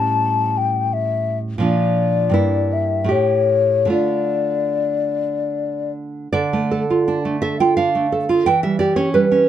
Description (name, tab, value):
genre	romantic duo for flute and classical guitar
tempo	71-89 BPM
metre	3/4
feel	rubato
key	D minor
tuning	A4 = 438 Hz
part	mellow hollow concert flute	melody	0.0-5.9 s	C#5 to A5	-19 LUFS	left 8 dB	none
part	nylon-string guitar	accompaniment	0.0-9.5 s	G2 to G5	-18 LUFS	right 3 dB	none
room	light reverb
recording	dark, warm production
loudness	-16 LUFS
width	side -10 dB against mid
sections	0.0-6.3 A section; 6.3-9.5 A section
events	none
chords	0.0 A7; 1.6 Bb; 2.4 Edim/G; 3.1 A7; 3.9 Dm; 8.5 C#dim/E